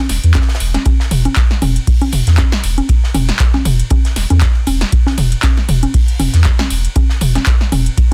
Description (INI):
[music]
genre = acid house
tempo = 118 BPM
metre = 4/4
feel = swing 56% on 16ths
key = unclear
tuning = A4 = 440 Hz
[part]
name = saturated sub bass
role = bass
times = 0.1-7.9 s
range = E1 to E2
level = -16 LUFS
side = equal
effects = sidechain pumping
[part]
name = electro analog drum machine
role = drums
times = 0.1-8.1 s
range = congas, handclaps, hi-hat, ride cymbal, snare drum, toms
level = -20 LUFS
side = equal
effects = overdrive
[part]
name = modern studio drum kit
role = drums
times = 0.1-8.1 s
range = hi-hat, ride cymbal, snare drum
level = -32 LUFS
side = equal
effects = high-pass filter on cymbals, high-pass filter on hats, high-pass filter on snare, high-pass filter on room
[part]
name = electronic kick drum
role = drums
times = 0.3-8.1 s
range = none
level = -15 LUFS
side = equal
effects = none
[sound]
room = little or no reverb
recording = dense, heavily limited modern master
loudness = -14 LUFS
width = mono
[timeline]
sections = 0.0-8.1 A section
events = none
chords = none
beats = 0.35 | 0.86 1.36 1.87 2.38 | 2.89 3.40 3.91 4.42 | 4.92 5.43 5.94 6.45 | 6.96 7.47 7.97